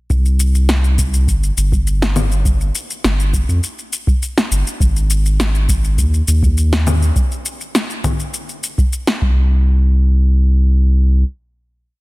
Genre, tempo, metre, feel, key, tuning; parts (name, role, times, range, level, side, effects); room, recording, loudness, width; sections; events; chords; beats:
sunset chillout; 102 BPM; 4/4; straight; C minor; A4 = 440 Hz
warm sub bass; bass; 0.1-11.2 s; G1 to F2; -13 LUFS; equal; tube saturation
electronic kick drum; drums; 0.1-9.3 s; -17 LUFS; equal
electronic shaker, snare drum and congas; drums; 0.1-9.2 s; -20 LUFS; left 1 dB; overdrive
little or no reverb; dense, heavily limited modern master, faint mains hum; -13 LUFS; side -21 dB against mid
0.1-9.5 groove; 9.5-11.9 final hit
| 0.10 0.69 1.28 1.86 | 2.45 3.04 3.63 4.22 | 4.81 5.39 5.98 6.57 | 7.16 7.75 8.34 8.92 | 9.51 10.10 10.69